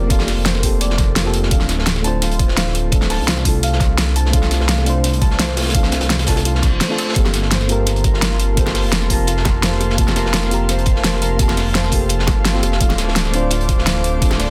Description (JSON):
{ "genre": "liquid drum and bass", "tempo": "170 BPM", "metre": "4/4", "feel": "straight", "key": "G minor", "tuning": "A4 = 436 Hz", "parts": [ { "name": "mellow FM electric piano", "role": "accompaniment", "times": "0.0-14.5 s", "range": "A3 to A5", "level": "-26 LUFS", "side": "equal", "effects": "chorus, digital delay" }, { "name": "felt-muted upright piano", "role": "arpeggios", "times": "0.0-14.5 s", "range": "F4 to A5", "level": "-30 LUFS", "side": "equal", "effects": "dub echo" }, { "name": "dark detuned saw bass", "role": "bass", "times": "0.0-14.5 s", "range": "D1 to C2", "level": "-22 LUFS", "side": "equal", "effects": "none" }, { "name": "crunchy breakbeat drum kit", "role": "drums", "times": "0.1-14.5 s", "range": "hi-hat, snare drum", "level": "-28 LUFS", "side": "equal", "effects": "high-pass filter on hats, high-pass filter on snare, high-pass filter on room" }, { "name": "electronic kick drum", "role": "drums", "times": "0.1-14.3 s", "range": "none", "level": "-19 LUFS", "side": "equal", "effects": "overdrive" }, { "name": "pop drum kit", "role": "drums", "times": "0.1-14.5 s", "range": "hi-hat, snare drum", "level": "-23 LUFS", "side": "equal", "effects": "overdrive" }, { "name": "reverse cymbal", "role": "sound effects", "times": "6.6-7.2 s", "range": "none", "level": "-29 LUFS", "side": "equal", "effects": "none" }, { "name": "airy breathy pad", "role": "sustained chords", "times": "7.2-14.5 s", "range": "Bb3 to D6", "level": "-30 LUFS", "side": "equal", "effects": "chorus, sidechain pumping" }, { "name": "bongos", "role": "percussion", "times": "7.3-14.4 s", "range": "none", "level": "-30 LUFS", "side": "equal", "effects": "none" } ], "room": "small room ambience", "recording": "dense, heavily limited modern master", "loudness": "-17 LUFS", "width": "mono", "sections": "0.0-14.5 A section", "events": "reverse cymbal 6.6-7.2", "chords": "0.0 Gm11; 1.5 Dm7; 7.2 Gm11; 12.8 Dm7" }